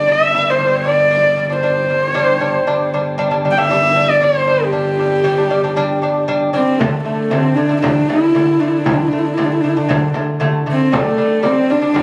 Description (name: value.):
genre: mongolian traditional, Mongolian folk.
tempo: 116 BPM.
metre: 4/4.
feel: straight.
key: G zhi mode.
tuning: A4 = 441 Hz.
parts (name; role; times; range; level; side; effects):
warm horsehead fiddle; melody; 0.0-12.0 s; A3 to G5; -17 LUFS; equal; none.
lute; arpeggios; 0.0-12.0 s; D3 to D4; -21 LUFS; equal; none.
muted double bass; drone; 0.0-6.9 s; G1; -27 LUFS; equal; none.
frame drum; percussion; 6.8-12.0 s; none; -23 LUFS; equal; none.
room: light reverb.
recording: recorded on a phone in the room, studio ambience, compression.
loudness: -15 LUFS.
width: mono.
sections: 0.0-6.8 A section; 6.8-12.0 B section.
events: none.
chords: 0.0 G5; 6.8 D5; 10.9 G5.